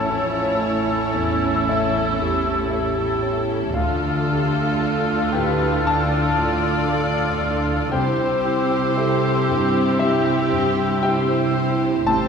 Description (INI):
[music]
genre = cinematic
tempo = 58 BPM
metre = 4/4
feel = rubato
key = unclear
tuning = A4 = 440 Hz
[part]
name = dark symphonic violin section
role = melody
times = 0.0-12.3 s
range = E4 to G4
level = -29 LUFS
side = left 3 dB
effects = none
[part]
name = clear oboe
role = second line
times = 0.0-12.3 s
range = A4 to C5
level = -31 LUFS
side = right 2 dB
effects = none
[part]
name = hollow flute section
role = second line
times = 0.0-12.3 s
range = E6 to F6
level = -28 LUFS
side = equal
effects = none
[part]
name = mellow clarinet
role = second line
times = 0.0-12.3 s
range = C#4 to G4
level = -32 LUFS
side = equal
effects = none
[part]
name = warm chamber violin section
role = second line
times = 0.0-12.3 s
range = G4 to D5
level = -29 LUFS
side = equal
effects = none
[part]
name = dark baby grand piano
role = accompaniment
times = 0.0-12.3 s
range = A1 to A5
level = -25 LUFS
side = left 1 dB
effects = none
[part]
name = dark symphonic viola section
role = accompaniment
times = 0.0-12.3 s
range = E3 to E4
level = -28 LUFS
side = right 2 dB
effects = none
[part]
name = mellow French horn section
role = sustained chords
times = 0.0-12.3 s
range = F3 to C5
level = -27 LUFS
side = equal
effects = none
[part]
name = concert harp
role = arpeggios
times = 0.0-12.3 s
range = A2 to G5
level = -32 LUFS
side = left 5 dB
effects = none
[part]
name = dark symphonic double bass section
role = bass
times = 0.0-12.3 s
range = A1 to D2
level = -29 LUFS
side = right 2 dB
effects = none
[part]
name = warm studio cello section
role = bass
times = 0.0-12.3 s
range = A2 to D3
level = -27 LUFS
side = right 3 dB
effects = none
[part]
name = timpani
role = percussion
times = 0.0-1.1 s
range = A2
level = -39 LUFS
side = left 2 dB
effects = none
[sound]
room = wet recital hall reverb, RT60 1.4 s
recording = recorded in a church or concert hall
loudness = -18 LUFS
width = side -6 dB against mid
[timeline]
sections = 0.0-12.3 A section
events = none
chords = 0.0 A; 3.8 Dm; 7.9 C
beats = 0.63 1.68 2.72 | 3.76 4.81 5.85 6.89 | 7.92 8.96 10.00 11.03 | 12.07